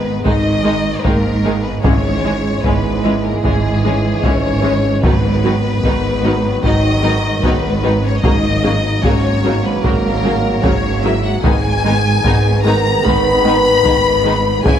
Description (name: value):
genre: cinematic, epic orchestral film score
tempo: 75 BPM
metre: 4/4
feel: straight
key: G# minor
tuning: A4 = 440 Hz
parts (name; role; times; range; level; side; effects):
- warm symphonic violin section; melody; 0.0-14.8 s; G#4 to B5; -20 LUFS; left 3 dB; none
- clear trombone section; sustained chords; 0.0-14.8 s; D#3 to C#4; -22 LUFS; right 4 dB; none
- mellow French horn section; sustained chords; 0.0-14.8 s; G#3 to B4; -21 LUFS; left 5 dB; none
- warm studio cello section; bass; 0.0-14.8 s; G#2; -20 LUFS; right 1 dB; none
- warm symphonic double bass section; bass; 0.0-14.8 s; G#1; -20 LUFS; right 2 dB; none
- sub drop; sound effects; 0.0-1.8 s; none; barely audible; none; none
- rich symphonic violin section; second line; 0.2-14.8 s; G#3 to E4; -24 LUFS; left 3 dB; none
- warm symphonic viola section; accompaniment; 0.2-14.7 s; C#3 to G#3; -22 LUFS; right 1 dB; none
- solo taiko drums; drums; 0.3-14.8 s; none; -19 LUFS; equal; none
room: moderate scoring stage reverb, RT60 2.1 s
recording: none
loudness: -12 LUFS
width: side -9 dB against mid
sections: 0.0-14.8 A section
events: impact 0.0-1.8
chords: 0.0 G#m; 1.8 C#m/G#; 5.0 B/G#; 8.2 F#/G#; 11.4 G#m